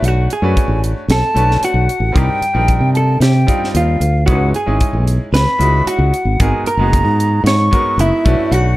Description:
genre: electric jazz fusion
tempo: 113 BPM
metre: 4/4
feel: straight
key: unclear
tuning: A4 = 440 Hz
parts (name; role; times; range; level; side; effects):
- mellow hollow silver concert flute; melody; 0.0-8.8 s; E5 to C#6; -18 LUFS; equal; none
- hollow-body jazz guitar; second line; 0.0-8.8 s; E4 to C#5; -22 LUFS; right 3 dB; none
- bright baby grand piano; accompaniment; 0.0-8.8 s; G3 to B4; -22 LUFS; equal; none
- fingered electric bass; bass; 0.0-8.8 s; F#1 to C3; -14 LUFS; equal; none
- crisp fusion drum kit; drums; 0.0-8.6 s; hi-hat, kick drum, snare drum; -19 LUFS; equal; none
room: little or no reverb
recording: dark, warm production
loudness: -12 LUFS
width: side -17 dB against mid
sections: 0.0-8.8 A section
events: none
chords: 0.0 Bm9; 2.2 Cm9; 4.3 C#m9; 6.4 G#m9; 8.3 Bm9

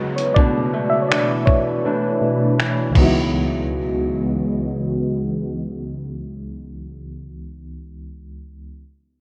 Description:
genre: contemporary R&B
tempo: 81 BPM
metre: 4/4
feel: straight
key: C# minor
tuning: A4 = 440 Hz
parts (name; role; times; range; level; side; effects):
- FM electric piano with tremolo; accompaniment; 0.0-8.8 s; C#2 to E5; -26 LUFS; equal; low-pass filter
- ethereal airy pad; sustained chords; 0.0-7.0 s; B2 to D#5; -28 LUFS; equal; ensemble chorus, built-in reverb, sidechain pumping, low-pass filter
- nylon-string guitar; arpeggios; 0.0-7.4 s; B2 to E4; -27 LUFS; equal; low-pass filter, delay
- downlifter; sound effects; 0.0-3.3 s; none; -44 LUFS; equal; none
- dusty soul sampler-style drum kit; drums; 0.2-3.1 s; crash cymbal, finger snaps, hi-hat, kick drum; -21 LUFS; equal; none
room: light reverb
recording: worn, warbling old tape, cassette tape, warbly pitch drift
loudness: -20 LUFS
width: mono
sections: 0.0-3.3 A section; 3.3-6.3 B section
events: FM electric piano solo 0.0-3.3; filter sweep 0.0-3.3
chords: 0.4 Bm11; 3.0 C#m11

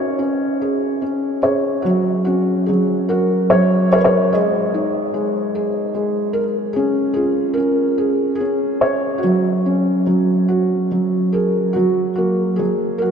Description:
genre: children's music, lullaby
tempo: 72 BPM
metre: 3/4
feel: rubato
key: F# major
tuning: A4 = 438 Hz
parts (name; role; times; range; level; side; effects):
- felt-muted upright piano; solo; 0.0-13.1 s; F#3 to D#5; -16 LUFS; equal; none
room: wet cathedral reverb, RT60 6.1 s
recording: in a vast, echoing space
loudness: -15 LUFS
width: side -7 dB against mid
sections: 0.0-11.8 A section; 11.8-13.1 A section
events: none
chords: 0.2 C#5; 1.9 F#; 4.3 G#5; 6.8 C#; 9.2 F#; 11.8 F#add9

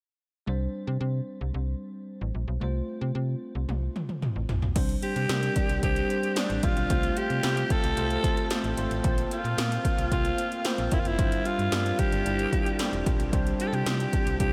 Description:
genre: 1980s-style pop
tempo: 112 BPM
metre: 4/4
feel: straight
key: unclear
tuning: A4 = 440 Hz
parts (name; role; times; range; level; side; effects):
- bell-like tine electric piano; accompaniment; 0.5-14.5 s; G3 to D5; -34 LUFS; equal; subtle chorus
- slap-like FM bass; bass; 0.5-14.5 s; E1 to C3; -32 LUFS; equal; none
- 80s electronic pad drums; drums; 3.7-14.5 s; crash cymbal, hi-hat, kick drum, snare drum, toms; -31 LUFS; equal; gated reverb on snare and toms
- breathy alto saxophone; melody; 5.0-14.5 s; C4 to A4; -32 LUFS; equal; analog delay
room: moderate huge ambient reverb, RT60 8.8 s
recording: dreamy mix soaked in reverb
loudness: -27 LUFS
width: mono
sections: 0.5-4.8 A section; 4.8-14.5 B section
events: drum fill 3.7-4.8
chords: 0.5 Csus2; 2.6 F/C; 4.8 Csus2; 6.9 F/C; 9.0 Bbsus2; 11.2 Gsus4; 13.3 Csus2

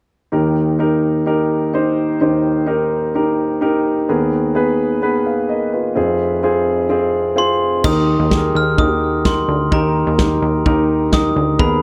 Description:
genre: piano-driven pop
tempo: 128 BPM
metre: 4/4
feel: straight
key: Eb major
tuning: A4 = 441 Hz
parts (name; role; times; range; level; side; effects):
- warm grand piano; accompaniment; 0.3-11.8 s; F1 to F5; -18 LUFS; equal; plate reverb
- glockenspiel with hard plastic mallets; melody; 7.4-11.7 s; Bb5 to F6; -23 LUFS; equal; plate reverb
- plucky analog bass; bass; 7.8-11.8 s; D2 to Eb2; -22 LUFS; equal; none
- natural country drum kit; drums; 7.8-11.7 s; crash cymbal, kick drum, snare drum; -21 LUFS; equal; none
room: moderate large studio reverb, RT60 0.8 s, studio reverb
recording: none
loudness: -17 LUFS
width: mono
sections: 0.3-7.8 A section; 7.8-11.8 B section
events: none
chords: 0.3 Eb; 4.1 Abmadd9/Eb; 6.0 Fm; 7.8 Eb

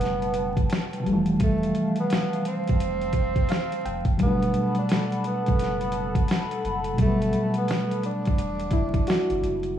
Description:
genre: lo-fi hip hop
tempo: 86 BPM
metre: 4/4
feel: swing 62% on 16ths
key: G major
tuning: A4 = 438 Hz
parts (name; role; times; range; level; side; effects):
- breathy tenor saxophone; melody; 0.0-9.7 s; A3 to D4; -29 LUFS; right 2 dB; low-pass filter
- reed electric piano; accompaniment; 0.0-9.8 s; B2 to G5; -26 LUFS; left 1 dB; fast tremolo, low-pass filter
- hollow soft pad; sustained chords; 0.0-9.7 s; A4 to B5; -34 LUFS; left 2 dB; chorus, low-pass filter
- sub bass with octave; bass; 0.0-9.8 s; E1 to G1; -30 LUFS; right 1 dB; none
- boom bap sampler-style drum kit; drums; 0.0-9.8 s; hi-hat, kick drum, snare drum; -25 LUFS; right 1 dB; vintage 12-bit sampler grit
room: light reverb, digital ambience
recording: vinyl crackle, studio reverb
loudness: -22 LUFS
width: side -10 dB against mid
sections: 0.0-9.8 A section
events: reed electric piano fill 3.1-4.2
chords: 0.0 Gmaj9; 1.1 Fmaj9; 4.2 Gmaj9

